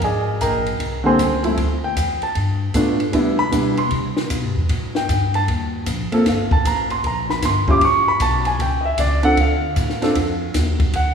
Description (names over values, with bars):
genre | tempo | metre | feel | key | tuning
jazz, small-group swing and bop | 154 BPM | 4/4 | swing 65% on 8ths | G minor | A4 = 440 Hz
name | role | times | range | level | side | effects
warm grand piano | accompaniment | 0.0-11.1 s | D3 to D6 | -19 LUFS | right 1 dB | none
upright bass | bass | 0.0-11.1 s | G1 to C3 | -22 LUFS | equal | none
compact cocktail drum kit | drums | 0.0-11.1 s | hi-hat, kick drum, ride cymbal, snare drum | -25 LUFS | left 1 dB | none
room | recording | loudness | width
wet scoring stage reverb, RT60 2.1 s | recorded in a church or concert hall, small room ambience | -16 LUFS | side -6 dB against mid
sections
0.0-11.1 A section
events
none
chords
0.0 Abmaj9#11; 1.6 Dsus2; 2.4 G9; 3.1 Cmaj9; 4.7 Gsus2; 5.5 Bbsus24; 6.3 Gm9; 7.8 A; 9.4 Dm